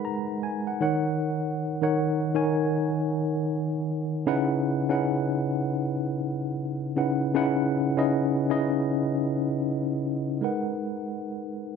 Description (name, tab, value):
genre	R&B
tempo	78 BPM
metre	4/4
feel	swing 63% on 16ths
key	C# dorian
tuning	A4 = 440 Hz
part	tine electric piano	solo	0.0-11.8 s	C#3 to B5	-24 LUFS	equal	overdrive, medium stereo tremolo
room	moderate echo chamber reverb, RT60 1.6 s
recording	none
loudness	-24 LUFS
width	side -6 dB against mid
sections	0.0-10.4 A section; 10.4-11.8 B section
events	none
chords	0.0 G#m7; 0.8 D#m7; 4.3 C#m11; 10.4 G#m7